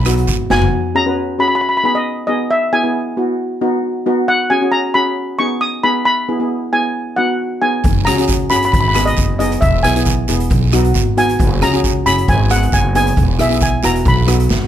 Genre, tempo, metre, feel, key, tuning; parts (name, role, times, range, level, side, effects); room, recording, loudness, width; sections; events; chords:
calypso; 135 BPM; 4/4; straight; B major; A4 = 438 Hz
steel pan; melody; 0.0-14.5 s; D#5 to D#6; -16 LUFS; equal
upright bass; bass; 0.0-0.7, 7.8-14.7 s; E1 to C#2; -17 LUFS; equal
guiro; percussion; 0.0-0.4, 7.8-14.6 s; -26 LUFS; right 8 dB
steel pan; accompaniment; 0.1-14.5 s; B3 to B4; -18 LUFS; equal
street-band drum kit; drums; 0.1-0.7, 7.8-14.6 s; hi-hat, kick drum, rim click, snare drum, toms; -18 LUFS; equal
light reverb; close, detailed microphones; -13 LUFS; side -10 dB against mid
0.7-14.7 A section
drum fill 0.5, 14.5
0.0 B; 0.7 F#sus2; 1.6 G#m; 2.5 E; 3.4 B; 4.3 F#sus2; 5.2 G#m; 6.1 E; 6.9 B; 7.8 F#sus2; 8.7 G#m; 9.6 E; 10.5 B; 11.4 F#sus2; 12.3 G#m; 13.2 E; 14.1 B